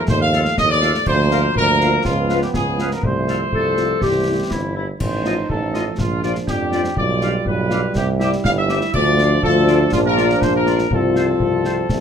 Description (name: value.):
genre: military-style march for wind band.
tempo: 122 BPM.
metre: 2/4.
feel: straight.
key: F major.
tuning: A4 = 439 Hz.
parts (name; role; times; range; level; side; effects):
dark trumpet section; melody; 0.0-12.0 s; F4 to F5; -21 LUFS; equal; none.
dark trombone section; sustained chords; 0.0-12.0 s; E3 to F4; -24 LUFS; right 3 dB; none.
warm tuba; bass; 0.1-12.0 s; G1 to F2; -21 LUFS; right 3 dB; none.
concert snare drum, concert bass drum and clash cymbals; drums; 0.1-12.0 s; none; -25 LUFS; left 1 dB; none.
clear woodwind section; second line; 0.3-11.7 s; E4 to F5; -24 LUFS; left 3 dB; none.
dark French horn section; accompaniment; 0.3-12.0 s; F3 to F4; -22 LUFS; left 7 dB; none.
room: moderate large studio reverb, RT60 0.8 s.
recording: close, detailed microphones.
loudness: -15 LUFS.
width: side -8 dB against mid.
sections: 0.0-12.0 A section.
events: none.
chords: 0.0 F7/Eb; 1.1 Bb/D; 2.1 Db7; 3.0 F/C; 4.0 C; 5.0 F7/A; 6.0 Bb; 7.0 G7/B; 8.0 C; 8.9 Dm; 9.9 Bb; 10.9 F/C.